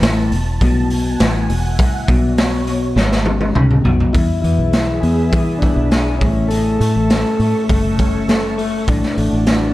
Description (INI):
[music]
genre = psychedelic rock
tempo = 102 BPM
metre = 4/4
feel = straight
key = E mixolydian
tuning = A4 = 439 Hz
[part]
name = soft string machine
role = sustained chords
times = 0.2-9.7 s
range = F#4 to E6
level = -28 LUFS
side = right 3 dB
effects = ensemble chorus
[part]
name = electric guitar through a small old amp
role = riff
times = 0.0-9.7 s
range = E2 to A4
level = -19 LUFS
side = left 2 dB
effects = rotary speaker, dub echo
[part]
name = fingered electric bass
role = bass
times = 0.0-9.7 s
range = E1 to E3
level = -19 LUFS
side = equal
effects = none
[part]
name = raw garage drum kit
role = drums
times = 0.0-9.6 s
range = hi-hat, kick drum, snare drum, toms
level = -17 LUFS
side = equal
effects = none
[part]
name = combo organ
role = melody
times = 4.1-9.7 s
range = C#4 to A4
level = -23 LUFS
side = left 1 dB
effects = dub echo
[sound]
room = light reverb, small room ambience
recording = echo-heavy mix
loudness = -13 LUFS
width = side -16 dB against mid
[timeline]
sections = 0.0-4.1 A section; 4.1-9.7 B section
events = string machine solo 0.0-4.1; drum fill 3.0-4.1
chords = 0.0 E; 6.2 A; 8.9 D/A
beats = 0.03 0.61 1.20 | 1.79 2.38 2.97 3.56 | 4.15 4.74 5.33 5.92 | 6.51 7.10 7.69 8.28 | 8.88 9.47